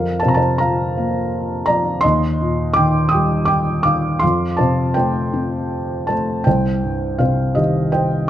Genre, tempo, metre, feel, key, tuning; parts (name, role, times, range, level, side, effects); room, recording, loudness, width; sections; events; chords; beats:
classical, lyrical solo piano; 82 BPM; 3/4; rubato; A4 = 440 Hz
felt-muted upright piano; solo; 0.0-8.3 s; C2 to Eb6; -16 LUFS; equal
moderate recital hall reverb, RT60 1.4 s; close, detailed microphones; -15 LUFS; side -11 dB against mid
0.0-8.3 A section
0.0 Fsus4; 2.0 Eb; 4.2 Fadd9; 6.5 Cm
0.60 1.31 | 2.03 2.76 3.49 | 4.22 4.96 5.71 | 6.46 7.20 7.94